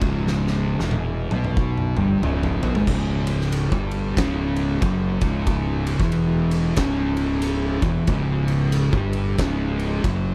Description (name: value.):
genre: stoner and doom metal.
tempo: 92 BPM.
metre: 4/4.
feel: swing 61% on 8ths.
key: C# minor.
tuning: A4 = 440 Hz.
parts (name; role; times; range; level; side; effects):
fuzz guitar; riff; 0.0-10.3 s; C#2 to B3; -25 LUFS; equal; distortion.
fuzz fingered electric bass; bass; 0.0-10.3 s; C#1 to B1; -28 LUFS; equal; overdrive.
oversized low-tuned drum kit; drums; 0.0-10.2 s; crash cymbal, kick drum, ride cymbal, snare drum, toms; -28 LUFS; equal; none.
room: small room ambience.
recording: none.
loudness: -22 LUFS.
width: mono.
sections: 0.0-2.9 A section; 2.9-10.3 B section.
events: drum fill 0.3-2.9.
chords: 0.0 C#m.